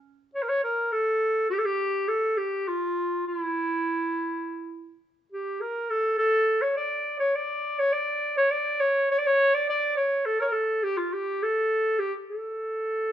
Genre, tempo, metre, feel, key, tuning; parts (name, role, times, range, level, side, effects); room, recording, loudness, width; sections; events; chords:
klezmer; 103 BPM; 4/4; straight; A phrygian dominant; A4 = 440 Hz
warm clarinet; solo; 0.0-13.1 s; E4 to D5; -24 LUFS; equal
moderate stone room reverb, RT60 1.1 s; band playing live in one room, nothing above 7.9 kHz; -24 LUFS; side -10 dB against mid
0.0-13.1 A section